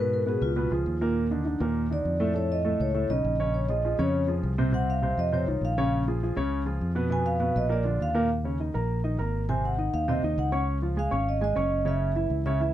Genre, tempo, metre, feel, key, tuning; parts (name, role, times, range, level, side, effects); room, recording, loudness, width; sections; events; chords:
jazz; 202 BPM; 4/4; straight; Bb minor; A4 = 437 Hz
vibraphone with soft mallets; melody; 0.0-12.7 s; F4 to Ab5; -29 LUFS; right 1 dB
warm grand piano; accompaniment; 0.0-12.7 s; A2 to Db6; -28 LUFS; right 1 dB
fingered electric bass; bass; 0.0-12.7 s; Gb1 to Ab2; -28 LUFS; equal
light reverb; dark, warm production; -24 LUFS; side -12 dB against mid
0.0-8.3 A section; 8.3-12.7 A section
vibraphone solo 0.0-12.7
0.0 Abm; 0.6 Db9; 1.2 Ebsus2; 2.4 Faug7; 3.5 Bbm9; 4.7 Cmadd11; 5.3 F5; 5.9 Bbm7; 7.1 Abm69; 7.7 Bb; 8.3 Eb5; 9.5 Ab7; 10.7 Dbadd9; 11.9 Gb5